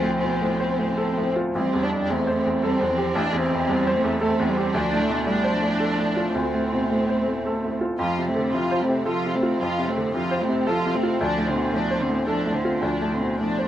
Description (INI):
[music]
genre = neoclassical piano and strings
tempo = 111 BPM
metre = 3/4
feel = rubato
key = A minor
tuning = A4 = 440 Hz
[part]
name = rich studio violin section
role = melody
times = 0.0-13.6 s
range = C4 to F4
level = -25 LUFS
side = equal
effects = none
[part]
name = clear cello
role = second line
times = 0.0-13.7 s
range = D3 to A3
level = -28 LUFS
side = right 4 dB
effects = none
[part]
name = bright upright piano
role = accompaniment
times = 0.0-13.7 s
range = A1 to C5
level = -24 LUFS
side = equal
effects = none
[sound]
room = light reverb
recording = worn, warbling old tape, cassette tape, warbly pitch drift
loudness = -21 LUFS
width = side -11 dB against mid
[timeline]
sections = 0.0-1.6 A section; 1.6-13.7 B section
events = none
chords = 0.0 Dm7; 1.6 Am7; 4.7 Dm7; 8.0 F; 11.2 Dm7